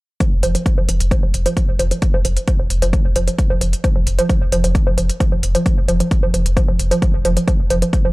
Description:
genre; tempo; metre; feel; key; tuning
driving peak-time techno; 132 BPM; 4/4; straight; unclear; A4 = 440 Hz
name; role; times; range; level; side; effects
woody wave-folded pluck; riff; 0.2-8.1 s; F3; -21 LUFS; right 1 dB; chorus, overdrive, sidechain pumping, tape echo
electronic hi-hat; drums; 0.2-8.0 s; none; -26 LUFS; equal; overdrive, sidechain pumping on hats
electronic kick drum; drums; 0.2-8.0 s; none; -17 LUFS; equal; overdrive
saturated sub bass; bass; 0.3-8.1 s; F1; -19 LUFS; equal; sidechain pumping, low-pass filter
room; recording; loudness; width
little or no reverb; dry, gritty hardware recording; -14 LUFS; side -22 dB against mid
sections
0.2-8.1 A section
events
none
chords
none

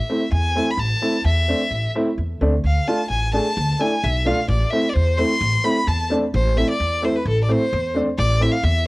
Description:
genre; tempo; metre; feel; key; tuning
klezmer; 130 BPM; 2/4; straight; A harmonic minor; A4 = 440 Hz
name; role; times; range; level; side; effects
clear violin; melody; 0.0-8.9 s; A4 to C6; -22 LUFS; left 1 dB; cassette tape, plate reverb
warm upright piano; accompaniment; 0.1-8.5 s; A3 to G#4; -23 LUFS; equal; cassette tape, plate reverb
upright bass; bass; 0.3-8.9 s; A1 to E2; -20 LUFS; equal; none
room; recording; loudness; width
light reverb; home recording on cassette; -17 LUFS; side -21 dB against mid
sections
0.0-6.3 A section; 6.3-8.9 B section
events
violin solo 0.0-6.3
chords
0.0 Am; 2.6 Dm; 4.5 Am

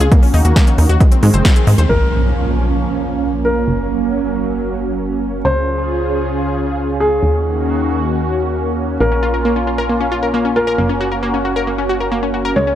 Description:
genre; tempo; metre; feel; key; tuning
uplifting trance; 135 BPM; 4/4; straight; Bb minor; A4 = 444 Hz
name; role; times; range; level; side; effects
lush unison pad; sustained chords; 0.0-12.8 s; Db3 to Ab4; -19 LUFS; right 2 dB; chorus, phaser, sidechain pumping
analog pluck; arpeggios; 0.0-1.9, 9.0-12.7 s; Ab3 to C5; -19 LUFS; left 2 dB; chorus, sidechain pumping, tape echo
plucky analog bass; bass; 0.0-12.8 s; Gb1 to Ab2; -19 LUFS; equal; sidechain pumping
big-room dance drum kit; drums; 0.0-1.9 s; hi-hat, snare drum; -24 LUFS; right 1 dB; none
electronic kick drum; drums; 0.1-1.5 s; none; -10 LUFS; equal; none
warm grand piano; second line; 1.9-12.8 s; Ab4 to Db5; -21 LUFS; left 1 dB; tape echo
impact; sound effects; 1.9-3.7 s; none; -20 LUFS; equal; none
room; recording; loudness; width
light reverb, digital ambience; dark, warm production; -13 LUFS; side -11 dB against mid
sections
0.0-1.9 A section; 1.9-12.8 B section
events
filter sweep on analog synth pad 0.0-1.9; band accent 1.4; impact 1.9-3.7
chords
0.1 Ebm7; 1.0 Ab; 1.9 Bbm; 3.7 Gb; 5.4 Db; 7.2 Ebm7; 9.0 Bbm; 10.8 Gb

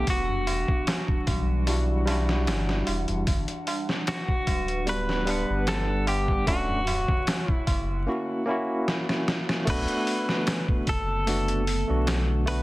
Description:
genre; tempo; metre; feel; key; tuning
trip hop; 75 BPM; 4/4; straight; B minor; A4 = 440 Hz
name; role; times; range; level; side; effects
direct-recorded clean electric guitar; melody; 0.0-12.6 s; F#4 to B4; -30 LUFS; equal; tape echo
barky tine electric piano; accompaniment; 0.0-12.6 s; G3 to F#5; -30 LUFS; equal; tremolo, tape echo
warbly tape-like pad; sustained chords; 0.0-12.6 s; D3 to F#5; -36 LUFS; right 1 dB; chorus, built-in reverb, phaser
soft dub sub bass; bass; 0.0-12.6 s; D1 to B1; -28 LUFS; equal; none
trip hop sampler-style drum kit; drums; 0.1-12.6 s; crash cymbal, hi-hat, kick drum, snare drum; -28 LUFS; equal; none
tabla; percussion; 0.1-8.0 s; none; -38 LUFS; right 2 dB; none
room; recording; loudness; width
light reverb, digital ambience; dense, heavily limited modern master, vinyl crackle; -23 LUFS; side -18 dB against mid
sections
0.0-9.7 A section; 9.7-12.6 B section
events
drum fill 8.9-9.7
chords
0.1 Em9; 3.3 Gmaj7; 6.5 Dmaj7; 8.1 F#7; 9.7 Bm7

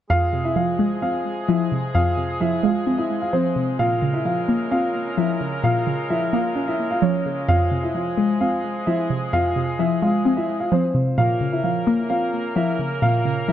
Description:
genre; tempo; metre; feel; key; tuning
hip hop; 130 BPM; 4/4; half-time; F harmonic minor; A4 = 441 Hz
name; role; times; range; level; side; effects
dark baby grand piano; melody; 0.1-13.5 s; C4 to F5; -23 LUFS; left 1 dB; low-pass filter, tape echo
warbly dusty pluck; accompaniment; 0.1-13.5 s; F2 to Db4; -22 LUFS; equal; chorus, phaser, low-pass filter, tape echo
clear woodwind section; sustained chords; 0.1-13.5 s; Db3 to Bb4; -29 LUFS; right 1 dB; none
room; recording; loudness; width
light reverb, small room ambience; echo-heavy mix; -19 LUFS; side -11 dB against mid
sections
0.1-13.5 A section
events
none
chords
0.1 Fm; 3.8 Bbmadd9; 7.5 Fm; 11.2 Bbmadd9

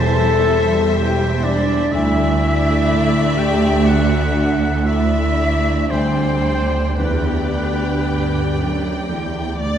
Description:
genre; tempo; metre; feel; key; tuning
cinematic, emotional film score for orchestra; 55-63 BPM; 4/4; rubato; unclear; A4 = 440 Hz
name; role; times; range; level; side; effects
rich studio violin section; melody; 0.0-9.8 s; D5 to G5; -27 LUFS; left 3 dB; none
clear oboe; second line; 0.0-9.8 s; B4 to A5; -27 LUFS; right 2 dB; none
rich studio violin section; second line; 0.0-9.8 s; C5 to D5; -29 LUFS; left 2 dB; none
silver concert flute; second line; 0.0-9.8 s; B4 to A5; -27 LUFS; left 1 dB; none
dark baby grand piano; accompaniment; 0.0-9.8 s; D2 to E3; -25 LUFS; left 2 dB; none
warm symphonic viola section; accompaniment; 0.0-9.8 s; G3 to G4; -28 LUFS; equal; none
dark French horn section; sustained chords; 0.0-9.1 s; B3 to A4; -23 LUFS; left 2 dB; none
concert harp; arpeggios; 0.0-9.8 s; D3 to D5; -27 LUFS; left 2 dB; none
rich studio cello section; bass; 0.0-9.8 s; D2 to G2; -23 LUFS; right 3 dB; none
rich studio double bass section; bass; 0.0-9.8 s; E1 to D2; -21 LUFS; right 2 dB; none
room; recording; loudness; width
wet scoring stage reverb, RT60 1.6 s; heard from further back in the room; -15 LUFS; side -9 dB against mid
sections
0.0-9.8 A section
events
none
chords
0.0 C/E; 1.9 Dsus2; 5.9 G/D

